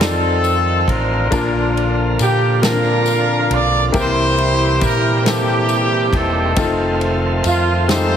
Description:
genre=slow gospel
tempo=46 BPM (dotted quarters)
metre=6/8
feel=straight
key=Bb major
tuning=A4 = 440 Hz
part: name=clear horn section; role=melody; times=0.0-8.2 s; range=Bb3 to D5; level=-18 LUFS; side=equal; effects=none
part: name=clear grand piano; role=accompaniment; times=0.0-8.2 s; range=Bb2 to A5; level=-21 LUFS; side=left 3 dB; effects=none
part: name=bright tonewheel organ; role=sustained chords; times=0.0-8.2 s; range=C3 to G4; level=-24 LUFS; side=right 3 dB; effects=fast rotary speaker, overdrive
part: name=fingered electric bass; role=bass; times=0.0-8.2 s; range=E1 to Bb2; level=-20 LUFS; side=equal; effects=none
part: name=natural country drum kit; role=drums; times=0.0-8.1 s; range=kick drum, ride cymbal, snare drum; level=-22 LUFS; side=equal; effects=none
part: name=tambourine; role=percussion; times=0.0-8.2 s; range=none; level=-32 LUFS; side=left 5 dB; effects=none
room=moderate concert hall reverb, RT60 2.4 s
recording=heavily compressed radio sound, multiband compression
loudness=-14 LUFS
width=side -8 dB against mid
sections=0.0-8.2 A section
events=none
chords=0.0 F7; 1.3 Bbmaj7; 3.9 C7; 6.6 F7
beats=0.01 | 1.32 2.63 | 3.94 5.26 | 6.57 7.88

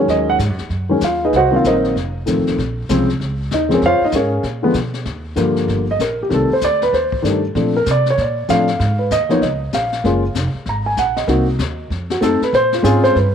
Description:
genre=jazz piano trio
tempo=193 BPM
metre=4/4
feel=swing 62% on 8ths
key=Bb minor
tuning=A4 = 440 Hz
part: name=dark baby grand piano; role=melody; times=0.0-13.3 s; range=Db3 to Bb5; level=-15 LUFS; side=equal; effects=none
part: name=upright bass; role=bass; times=0.0-13.3 s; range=Eb1 to C3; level=-21 LUFS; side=right 1 dB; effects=none
part: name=jazz brush drum kit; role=drums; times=0.1-13.3 s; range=brushed snare drum, hi-hat, kick drum, snare drum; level=-28 LUFS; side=left 7 dB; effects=none
room=moderate spring reverb, RT60 1.5 s, small room ambience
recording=1960s-style stereo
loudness=-15 LUFS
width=side -8 dB against mid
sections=0.0-5.1 A section; 5.1-13.3 B section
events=none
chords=0.1 B6 (rootless); 1.3 Cm7b5; 2.0 F7; 2.6 Bbm9; 4.4 Bb5; 5.1 Ebmaj9; 6.3 Cm69; 7.6 Bbmaj9; 8.8 Abm; 9.4 Db69; 10.0 Gbmaj7; 11.3 Cm7b5; 11.9 F7b9; 12.5 Bbm9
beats=| 0.09 0.40 0.71 1.02 | 1.33 1.64 1.95 2.27 | 2.58 2.89 3.20 3.51 | 3.82 4.13 4.44 4.75 | 5.07 5.38 5.69 6.00 | 6.31 6.62 6.93 7.24 | 7.55 7.87 8.18 8.49 | 8.80 9.11 9.42 9.73 | 10.04 10.36 10.67 10.98 | 11.29 11.60 11.91 12.22 | 12.54 12.85 13.16

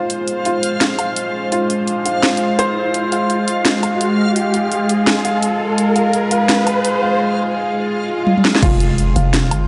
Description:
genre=half-time drum and bass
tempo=169 BPM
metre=4/4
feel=swing 60% on 16ths, half-time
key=F minor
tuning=A4 = 442 Hz
part: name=bowed-like drone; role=sustained chords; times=0.0-9.7 s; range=C3 to C5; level=-22 LUFS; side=equal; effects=built-in reverb, vintage 12-bit sampler grit, sidechain pumping
part: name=felt-muted upright piano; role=arpeggios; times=0.0-9.7 s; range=F4 to F5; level=-24 LUFS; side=equal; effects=tape echo
part: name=riser, swell and impact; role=sound effects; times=0.3-9.7 s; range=none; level=-26 LUFS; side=equal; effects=none
part: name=backwards swelling texture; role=texture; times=0.0-9.7 s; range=F4 to G5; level=-28 LUFS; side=equal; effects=built-in reverb
part: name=drum and bass drum kit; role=drums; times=0.1-9.6 s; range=crash cymbal, hi-hat, snare drum, toms, woodblock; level=-20 LUFS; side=equal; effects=overdrive
part: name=growling 808-style bass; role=bass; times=8.6-9.7 s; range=F1 to G1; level=-18 LUFS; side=equal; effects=tube saturation
part: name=electronic kick drum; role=drums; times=8.6-8.7 s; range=none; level=-18 LUFS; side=equal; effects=overdrive
room=moderate lush hall reverb, RT60 2.2 s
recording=dry, gritty hardware recording, nothing above 10.9 kHz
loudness=-17 LUFS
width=mono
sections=0.0-8.6 A section; 8.6-9.7 B section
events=build-up 0.0-8.6; riser 0.3-7.2; swell 8.0-8.6; drum fill 8.3-8.6; drop 8.6-9.7; impact 8.6-9.7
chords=0.0 Fm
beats=| 0.10 0.46 0.81 1.17 | 1.52 1.88 2.23 2.59 | 2.94 3.30 3.65 4.01 | 4.36 4.72 5.07 5.43 | 5.78 6.14 6.49 6.85 | 7.20 7.56 7.91 8.27 | 8.62 8.98 9.33

